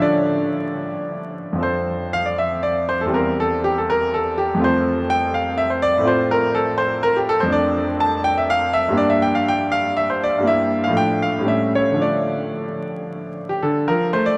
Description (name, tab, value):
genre	classical, baroque-style suite movement for grand piano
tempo	110-125 BPM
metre	3/4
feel	rubato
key	F major, D minor from 7.5 s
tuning	A4 = 440 Hz
part	bright concert grand piano	solo	0.0-14.4 s	E2 to A5	-20 LUFS	equal	none
room	wet cathedral reverb, RT60 6.7 s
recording	vinyl crackle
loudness	-20 LUFS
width	mono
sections	0.0-1.6 A section; 1.6-13.6 A section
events	none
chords	0.0 Dm; 1.6 F; 3.1 C/E; 4.6 F; 6.1 F/A; 7.5 Dm/F; 9.0 Gm; 10.5 Edim/G; 11.0 Dm/A; 11.5 A7; 12.0 Dm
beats	| 0.02 0.56 1.10 | 1.64 2.14 2.64 | 3.14 3.64 4.13 | 4.62 5.10 5.58 | 6.07 6.55 7.04 | 7.52 8.01 8.50 | 8.98 9.47 9.96 | 10.46 10.96 11.48 | 12.01 12.55 13.09 | 13.62 14.13